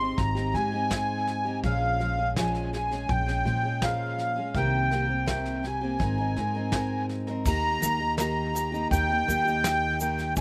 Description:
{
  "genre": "acoustic folk duo or small band",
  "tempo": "82 BPM",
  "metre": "4/4",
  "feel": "straight",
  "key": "unclear",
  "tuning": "A4 = 442 Hz",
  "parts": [
    { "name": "accordion", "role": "melody", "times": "0.0-10.4 s", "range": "F5 to C6", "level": "-30 LUFS", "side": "equal", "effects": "light tremolo tuning" },
    { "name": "picked steel-string acoustic guitar", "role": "accompaniment", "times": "0.0-10.4 s", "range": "Bb2 to Bb4", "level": "-34 LUFS", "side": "equal", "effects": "none" },
    { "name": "upright bass", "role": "bass", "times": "0.0-10.4 s", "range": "Ab1 to Bb2", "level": "-33 LUFS", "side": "equal", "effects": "none" },
    { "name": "soft brush drum kit", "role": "drums", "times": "0.2-10.4 s", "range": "crash cymbal, kick drum, snare drum", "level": "-34 LUFS", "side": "equal", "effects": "none" },
    { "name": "tube shaker", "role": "percussion", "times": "7.5-10.4 s", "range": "none", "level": "-38 LUFS", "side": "equal", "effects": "none" }
  ],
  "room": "little or no reverb",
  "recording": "recorded outdoors, with no room sound",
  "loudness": "-27 LUFS",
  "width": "mono",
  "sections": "0.0-7.5 A section; 7.5-10.4 B section",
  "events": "none",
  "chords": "0.0 Abmaj7; 1.6 Bbm7; 4.6 Cm7; 6.0 Abadd9; 7.5 Eb",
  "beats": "0.18 0.91 | 1.64 2.37 3.10 3.82 | 4.55 5.28 6.00 6.73 | 7.46 8.19 8.91 9.64 | 10.36"
}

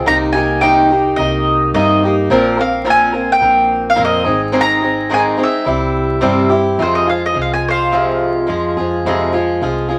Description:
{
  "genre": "folk rock and heartland rock",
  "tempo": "107 BPM",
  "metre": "4/4",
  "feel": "straight",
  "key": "F minor",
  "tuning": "A4 = 440 Hz",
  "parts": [
    { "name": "picked swing-style acoustic guitar", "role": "accompaniment", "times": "0.0-10.0 s", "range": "F2 to Bb4", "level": "-18 LUFS", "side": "equal", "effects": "none" },
    { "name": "hollow-body short-scale fingered electric bass", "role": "bass", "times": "0.0-10.0 s", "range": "Ab1 to G2", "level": "-25 LUFS", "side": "equal", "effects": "none" },
    { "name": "mandolin", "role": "melody", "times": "0.1-9.3 s", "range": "C5 to Bb5", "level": "-17 LUFS", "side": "equal", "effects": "none" }
  ],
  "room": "wet small room reverb, RT60 0.5 s",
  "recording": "vinyl crackle",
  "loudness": "-14 LUFS",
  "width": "mono",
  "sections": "0.0-6.8 A section; 6.8-10.0 B section",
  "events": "mandolin solo 6.8-10.0",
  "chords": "0.1 Cm7; 2.3 Bbsus2; 4.3 Ab; 5.7 C; 6.8 Fm",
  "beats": "| 0.08 0.63 1.19 1.75 | 2.30 2.86 3.42 3.98 | 4.54 5.10 5.66 6.22 | 6.79 7.35 7.92 8.48 | 9.05 9.61"
}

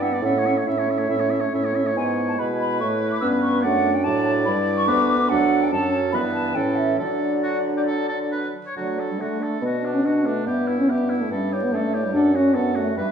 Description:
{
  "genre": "quick classical-period movement for wind quintet",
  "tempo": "142 BPM",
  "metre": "4/4",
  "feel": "rubato",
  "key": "D major",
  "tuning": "A4 = 440 Hz",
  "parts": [
    { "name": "hollow concert flute", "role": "melody", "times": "0.0-13.1 s", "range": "A4 to E6", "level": "-26 LUFS", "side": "equal", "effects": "none" },
    { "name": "warm oboe", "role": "second line", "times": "0.0-13.1 s", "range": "D4 to E5", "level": "-30 LUFS", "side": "left 1 dB", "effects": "none" },
    { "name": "clear French horn", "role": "accompaniment", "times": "0.0-13.1 s", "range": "E3 to D4", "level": "-24 LUFS", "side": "equal", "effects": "none" },
    { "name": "warm clarinet", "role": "accompaniment", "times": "0.0-13.1 s", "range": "A3 to F#4", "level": "-28 LUFS", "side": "right 4 dB", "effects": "none" },
    { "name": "warm bassoon", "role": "bass", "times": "0.0-13.1 s", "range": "D2 to D3", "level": "-25 LUFS", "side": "right 2 dB", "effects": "none" }
  ],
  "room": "moderate recital hall reverb, RT60 1.6 s",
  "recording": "vinyl crackle, small room ambience",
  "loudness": "-19 LUFS",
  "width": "side -7 dB against mid",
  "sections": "0.0-8.8 A section; 8.8-13.1 A section",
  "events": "none",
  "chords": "0.2 A; 2.0 E/G#; 2.8 A; 3.6 D/F#; 4.5 G; 5.3 D; 6.1 Em/G; 6.5 A7; 7.0 D; 9.6 Bm; 10.5 Em/G; 12.1 D/F#",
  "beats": "| 0.23 0.67 1.09 1.53 | 1.96 2.40 2.82 3.23 | 3.64 4.06 4.47 4.88 | 5.30 5.71 6.13 6.55 | 6.99 7.43 7.88 8.32 | 8.76 9.19 9.62 10.04 | 10.46 10.88 11.30 11.72 | 12.13 12.55 12.96"
}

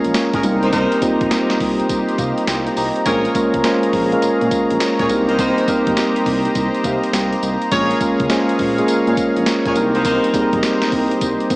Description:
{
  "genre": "R&B, new jack swing",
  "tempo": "103 BPM",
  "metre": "4/4",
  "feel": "swing 66% on 16ths",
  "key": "unclear",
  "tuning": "A4 = 440 Hz",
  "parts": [
    { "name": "mellow tine electric piano", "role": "accompaniment", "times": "0.0-11.6 s", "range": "G3 to Bb5", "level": "-17 LUFS", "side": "equal", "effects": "none" },
    { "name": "brassy analog pad", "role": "sustained chords", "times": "0.0-11.6 s", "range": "G4 to Bb5", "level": "-23 LUFS", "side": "left 1 dB", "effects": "chorus" },
    { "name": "smooth gliding synth bass", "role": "bass", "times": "0.0-11.6 s", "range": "Bb1 to C3", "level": "-25 LUFS", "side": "equal", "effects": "none" },
    { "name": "boom bap sampler-style drum kit", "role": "drums", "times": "0.0-11.6 s", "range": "hi-hat, kick drum, snare drum, tambourine", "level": "-24 LUFS", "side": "equal", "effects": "none" },
    { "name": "warm horn section", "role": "stabs", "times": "0.3-10.3 s", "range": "Db4 to Db5", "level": "-24 LUFS", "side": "equal", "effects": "diffuse ambient delay" }
  ],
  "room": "wet plate reverb, RT60 2.7 s",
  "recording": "dreamy mix soaked in reverb, small speaker sound",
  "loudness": "-14 LUFS",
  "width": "side -23 dB against mid",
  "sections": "0.0-11.6 A section",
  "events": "tine electric piano fill 1.9-3.1, 6.6-7.7",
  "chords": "0.4 Cm7; 3.1 Bbm7; 5.1 Cm7; 7.7 Bbm7; 9.8 Cm7",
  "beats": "0.14 | 0.73 1.31 1.89 2.47 | 3.06 3.64 4.22 4.80 | 5.39 5.97 6.55 7.13 | 7.72 8.30 8.88 9.46 | 10.05 10.63 11.21"
}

